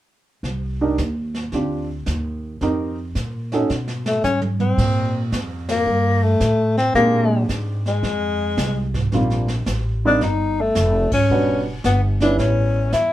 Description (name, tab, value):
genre	jazz, small-group swing and bop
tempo	111 BPM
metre	4/4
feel	swing 67% on 8ths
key	unclear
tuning	A4 = 439 Hz
part	upright bass	bass	0.4-13.1 s	E1 to Cb3	-22 LUFS	equal	none
part	jazz brush drum kit	drums	0.4-13.1 s	brushed snare drum, crash cymbal, hi-hat, kick drum, ride cymbal, snare drum, toms	-26 LUFS	right 2 dB	none
part	warm baby grand piano	accompaniment	0.8-3.7, 7.0-12.9 s	G3 to Bb4	-22 LUFS	right 2 dB	none
part	breathy tenor saxophone	melody	4.1-13.1 s	Ab3 to E4	-19 LUFS	left 2 dB	none
room	moderate studio reverb, RT60 0.5 s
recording	band playing live in one room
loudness	-18 LUFS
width	side -13 dB against mid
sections	0.4-4.8 A section; 4.8-13.1 B section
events	drum fill 3.7-4.8; band accent 5.6, 11.0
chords	0.4 Cm7; 1.5 Dm7; 2.6 F7sus4; 3.7 Abm; 4.8 Bb5; 7.0 Bb13; 9.1 Eb69 (rootless); 11.3 Em9; 12.4 A7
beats	| 0.44 0.99 1.53 2.07 | 2.62 3.16 3.70 4.25 | 4.79 5.33 5.87 6.42 | 6.96 7.50 8.04 8.58 | 9.13 9.67 10.21 10.75 | 11.29 11.84 12.38 12.92